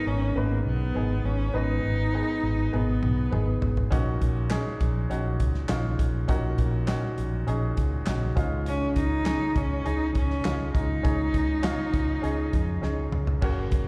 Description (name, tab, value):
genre	piano-driven pop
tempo	101 BPM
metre	4/4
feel	straight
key	unclear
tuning	A4 = 444 Hz
part	warm cello	melody	0.0-3.6, 8.7-13.1 s	Bb3 to Eb4	-32 LUFS	equal	none
part	clear upright piano	accompaniment	0.0-13.9 s	Ab2 to Cb5	-34 LUFS	equal	slapback echo
part	vintage muted fingered electric bass	bass	0.1-13.9 s	Gb1 to F2	-30 LUFS	equal	none
part	loose indie drum kit	drums	2.7-13.9 s	crash cymbal, handclaps, hi-hat, kick drum, snare drum, toms	-30 LUFS	equal	none
room	light reverb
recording	live gig heard through the venue's PA, recital hall reverb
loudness	-26 LUFS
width	mono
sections	0.0-13.4 A section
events	drum fill 2.7-3.9, 12.8-13.4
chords	0.0 Abm; 3.9 Ebm7/Bb; 8.4 Dbadd9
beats	0.37 0.96 | 1.55 2.15 2.74 3.33 | 3.92 4.52 5.11 5.70 | 6.29 6.89 7.48 8.07 | 8.67 9.26 9.86 10.45 | 11.04 11.64 12.23 12.83 | 13.42